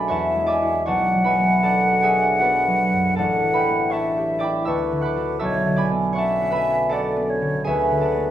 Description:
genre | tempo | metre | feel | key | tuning
classical, impressionist duo for flute and harp | 80 BPM | 3/4 | rubato | B dorian | A4 = 440 Hz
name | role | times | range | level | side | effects
mellow concert flute | melody | 0.0-8.3 s | B4 to F#5 | -21 LUFS | left 2 dB | none
concert harp | accompaniment | 0.0-8.3 s | A1 to F#6 | -21 LUFS | right 2 dB | none
room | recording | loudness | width
moderate recital hall reverb, RT60 1.4 s | close, detailed microphones | -18 LUFS | side -11 dB against mid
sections
0.0-8.3 A section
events
none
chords
0.1 Eadd9; 0.9 Bmadd9; 3.2 A9sus4; 4.7 D69; 5.4 Bm9; 7.7 D69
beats
0.11 | 0.87 1.65 2.42 | 3.18 3.92 4.67 | 5.41 6.16 6.92 | 7.67

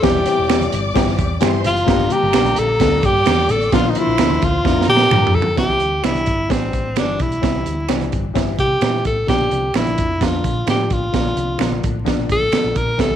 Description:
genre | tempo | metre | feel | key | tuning
uptempo 1960s-style soul | 130 BPM | 4/4 | straight | unclear | A4 = 440 Hz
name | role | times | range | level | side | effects
breathy tenor saxophone | melody | 0.0-13.2 s | C4 to Bb4 | -18 LUFS | equal | none
warm symphonic violin section | second line | 0.0-5.6 s | Bb3 to D6 | -27 LUFS | left 2 dB | none
warm upright piano | accompaniment | 0.0-13.2 s | D3 to A4 | -23 LUFS | left 11 dB | none
fingered electric bass | bass | 0.0-13.2 s | E1 to C3 | -23 LUFS | equal | none
crunchy breakbeat drum kit | drums | 0.0-13.1 s | hi-hat, kick drum, snare drum, toms | -20 LUFS | right 4 dB | none
congas | percussion | 0.0-13.2 s | none | -31 LUFS | right 5 dB | none
finger snaps | percussion | 0.5-12.6 s | none | -29 LUFS | right 13 dB | none
room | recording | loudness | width
small room ambience | 1960s-style stereo with parts hard left and right, vinyl crackle | -15 LUFS | side -10 dB against mid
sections
0.0-5.6 A section; 5.6-13.2 B section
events
drum fill 4.7-5.6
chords
0.0 C/E; 1.9 Gm; 3.7 Bb; 5.6 C; 9.3 Bb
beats
| 0.04 0.50 0.96 1.42 | 1.88 2.34 2.80 3.27 | 3.73 4.19 4.65 5.11 | 5.58 6.04 6.50 6.97 | 7.43 7.89 8.36 8.82 | 9.29 9.75 10.21 10.67 | 11.14 11.60 12.06 12.53 | 12.99

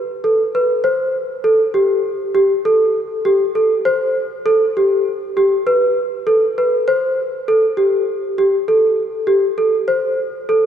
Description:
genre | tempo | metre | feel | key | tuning
progressive instrumental, progressive | 100 BPM | 5/4 | straight | unclear | A4 = 440 Hz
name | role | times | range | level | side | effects
celesta | solo | 0.2-10.6 s | G4 to C5 | -14 LUFS | equal | none
room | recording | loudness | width
wet church reverb, RT60 3.7 s | recorded in a church or concert hall | -14 LUFS | side -9 dB against mid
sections
0.0-10.7 A section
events
none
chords
none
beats
0.24 | 0.84 1.44 2.05 2.65 3.25 | 3.85 4.46 5.06 5.66 6.26 | 6.87 7.47 8.07 8.68 9.28 | 9.88 10.48

